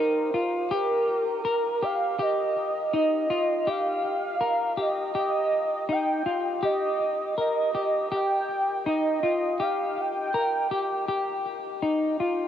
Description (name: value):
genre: dream pop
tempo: 81 BPM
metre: 4/4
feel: straight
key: unclear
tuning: A4 = 440 Hz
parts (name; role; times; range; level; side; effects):
- warm velvety synth lead; melody; 0.0-11.5 s; Bb4 to G5; -26 LUFS; right 2 dB; chorus, digital delay
- semi-hollow electric guitar; arpeggios; 0.0-12.5 s; Eb4 to Bb4; -27 LUFS; left 3 dB; lush chorus, digital delay
room: moderate huge ambient reverb, RT60 7.9 s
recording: worn, warbling old tape, cassette tape, warbly pitch drift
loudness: -24 LUFS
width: side -10 dB against mid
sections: 0.0-12.5 A section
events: none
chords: 0.0 Ebadd9